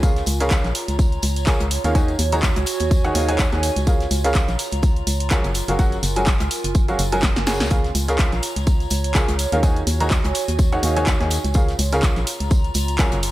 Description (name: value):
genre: piano house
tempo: 125 BPM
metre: 4/4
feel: swing 56% on 16ths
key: Db major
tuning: A4 = 441 Hz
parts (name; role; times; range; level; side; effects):
- clear upright piano; riff; 0.0-13.2 s; Db3 to Bb5; -24 LUFS; equal; sidechain pumping, dub echo
- organ-like FM bass; bass; 0.0-13.3 s; Gb1 to Eb2; -23 LUFS; equal; sidechain pumping
- damped 70s drum kit; drums; 0.0-13.3 s; hi-hat, snare drum, tambourine; -36 LUFS; left 1 dB; none
- electronic kick drum; drums; 0.0-13.1 s; none; -19 LUFS; equal; none
- punchy analog drum machine; drums; 0.0-13.3 s; handclaps, hi-hat, snare drum; -26 LUFS; right 1 dB; none
- tambourine; percussion; 0.0-13.3 s; none; -34 LUFS; left 5 dB; none
- warbly tape-like pad; texture; 0.0-13.3 s; F4 to Bb5; -28 LUFS; right 4 dB; chorus, built-in reverb, sidechain pumping
room: light reverb, studio reverb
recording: none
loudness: -17 LUFS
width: side -16 dB against mid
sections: 0.0-13.3 A section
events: drum fill 7.2-7.7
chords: 0.0 Db6; 1.9 Ab7sus4; 3.9 Gbmaj9; 7.7 Db6; 9.6 Ab7sus4; 11.6 Gbmaj9